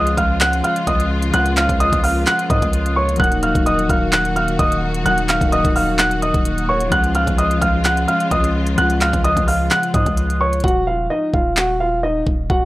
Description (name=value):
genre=hip hop, trap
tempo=129 BPM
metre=4/4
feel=half-time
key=Eb minor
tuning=A4 = 437 Hz
part: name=dark concert grand piano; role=melody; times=0.0-12.7 s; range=Eb4 to Gb6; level=-18 LUFS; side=right 1 dB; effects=low-pass filter, tape echo
part: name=concert harp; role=accompaniment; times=0.0-11.7 s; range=F3 to Gb4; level=-24 LUFS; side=left 4 dB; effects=low-pass filter
part: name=rich studio string section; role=sustained chords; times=0.0-10.6 s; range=Db3 to Gb4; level=-25 LUFS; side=left 1 dB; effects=none
part: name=distorted 808-style bass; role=bass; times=0.0-12.7 s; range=Eb1 to Ab2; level=-22 LUFS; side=equal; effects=distortion
part: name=trap drum kit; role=drums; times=0.1-12.6 s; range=handclaps, hi-hat, kick drum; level=-20 LUFS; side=equal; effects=none
room=small room reverb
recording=dry, gritty hardware recording, transformer saturation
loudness=-15 LUFS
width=side -17 dB against mid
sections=0.0-10.6 A section; 10.6-12.7 B section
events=hi-hats muted 10.6-12.7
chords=0.0 Db; 3.2 Ebm; 6.9 Db; 10.6 Ebm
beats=0.41 0.87 | 1.34 1.80 2.27 2.73 | 3.20 3.66 4.13 4.59 | 5.06 5.52 5.99 6.45 | 6.92 7.38 7.85 8.31 | 8.78 9.24 9.71 10.17 | 10.64 11.10 11.57 12.03 | 12.50